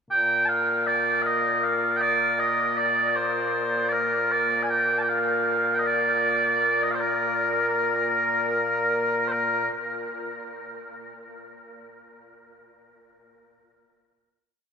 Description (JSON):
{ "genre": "scottish traditional, Scottish pipe music", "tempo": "78 BPM", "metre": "3/4", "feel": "straight", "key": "Bb major", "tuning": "A4 = 440 Hz", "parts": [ { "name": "mellow small bagpipes", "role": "solo", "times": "0.1-9.7 s", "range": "Bb2 to A5", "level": "-22 LUFS", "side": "equal", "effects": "none" } ], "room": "wet huge ambient reverb, RT60 8.1 s", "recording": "heard from further back in the room", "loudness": "-21 LUFS", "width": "side -6 dB against mid", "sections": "0.1-9.3 A section; 9.3-11.6 final note", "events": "none", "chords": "none" }